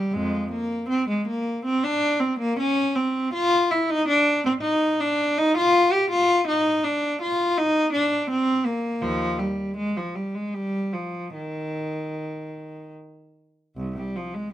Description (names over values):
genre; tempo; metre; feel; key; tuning
classical, baroque-style suite movement for unaccompanied cello; 72-83 BPM; 3/4; rubato; C minor, Eb major from 4.6 s; A4 = 439 Hz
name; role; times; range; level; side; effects
rich cello; solo; 0.0-14.5 s; C2 to G4; -21 LUFS; equal; none
room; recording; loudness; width
light reverb; close, detailed microphones; -21 LUFS; side -12 dB against mid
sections
0.0-13.8 A section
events
none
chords
none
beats
| 0.14 0.91 1.66 | 2.41 3.16 3.90 | 4.63 5.38 6.10 | 6.83 7.56 8.29 | 9.02 9.76 10.53 | 11.33 12.14 12.95 | 13.76 14.53